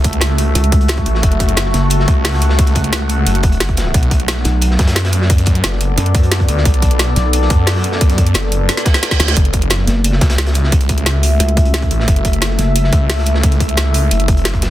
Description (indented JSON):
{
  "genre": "dark technical drum and bass",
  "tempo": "177 BPM",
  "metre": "4/4",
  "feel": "straight",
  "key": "F# minor",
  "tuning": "A4 = 440 Hz",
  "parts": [
    { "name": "deep dark ambient pad", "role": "sustained chords", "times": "0.0-14.7 s", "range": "A3 to F#5", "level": "-21 LUFS", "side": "left 2 dB", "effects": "chorus, built-in reverb, sidechain pumping" },
    { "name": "snarling distorted saw bass", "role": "bass", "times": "0.0-14.7 s", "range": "F#1 to F#2", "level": "-15 LUFS", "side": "equal", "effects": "distortion, overdrive, sidechain pumping" },
    { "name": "crunchy breakbeat drum kit", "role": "drums", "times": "0.0-14.7 s", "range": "hi-hat, snare drum", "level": "-26 LUFS", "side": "equal", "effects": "high-pass filter on hats, high-pass filter on snare, high-pass filter on room" },
    { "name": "drum and bass drum kit", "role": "drums", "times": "0.0-14.7 s", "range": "hi-hat, snare drum", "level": "-18 LUFS", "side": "right 1 dB", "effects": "none" },
    { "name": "electronic kick drum", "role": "drums", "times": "0.0-14.6 s", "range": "none", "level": "-14 LUFS", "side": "equal", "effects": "overdrive" },
    { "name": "pulsing pluck wobble bass", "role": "bass", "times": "0.6-2.1, 4.5-12.9 s", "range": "F#1 to F#2", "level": "-14 LUFS", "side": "equal", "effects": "chorus" },
    { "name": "reverse cymbal", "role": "sound effects", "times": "8.8-9.4 s", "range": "none", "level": "-23 LUFS", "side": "right 6 dB", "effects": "none" }
  ],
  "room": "small room ambience",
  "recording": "dense, heavily limited modern master",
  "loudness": "-11 LUFS",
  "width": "side -14 dB against mid",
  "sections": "0.0-14.7 A section",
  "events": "drum fill 8.7-9.4; reverse cymbal 8.8-9.4",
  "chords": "0.0 F#m7; 3.9 Bm7; 9.4 F#m7"
}